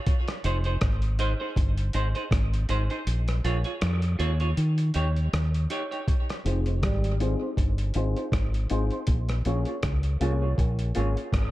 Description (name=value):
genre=dub reggae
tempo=80 BPM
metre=4/4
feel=swing 56% on 16ths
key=F minor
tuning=A4 = 442 Hz
part: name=dusty soul sampler-style drum kit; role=drums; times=0.1-11.5 s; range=hi-hat, kick drum, rim click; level=-28 LUFS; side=equal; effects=none
part: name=semi-hollow electric guitar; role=accompaniment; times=0.4-11.1 s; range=Eb4 to Db5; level=-33 LUFS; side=right 3 dB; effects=high-pass filter, low-pass filter, tape echo
part: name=deep dub fingered electric bass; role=bass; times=0.4-11.5 s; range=F1 to Eb3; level=-25 LUFS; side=equal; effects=none
part: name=warm concert grand piano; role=stabs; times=6.4-11.2 s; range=Bb3 to Ab4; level=-33 LUFS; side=left 4 dB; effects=high-pass filter, low-pass filter, tape echo
part: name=breathy trombone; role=melody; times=6.8-7.2 s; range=G3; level=-35 LUFS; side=right 2 dB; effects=low-pass filter, tape echo
room=light reverb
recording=dark, warm production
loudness=-24 LUFS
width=side -16 dB against mid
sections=0.0-6.1 A section; 6.1-11.5 B section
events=break 0.0-6.1; kick muted 3.1-6.1; filter sweep 9.1-11.5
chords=0.1 Fm7 (rootless); 3.1 Bbm7; 4.6 Eb7; 6.1 Fm7; 9.1 Bbm7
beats=| 0.06 0.82 1.57 2.32 | 3.07 3.82 4.57 5.32 | 6.07 6.83 7.58 8.33 | 9.08 9.83 10.58 11.33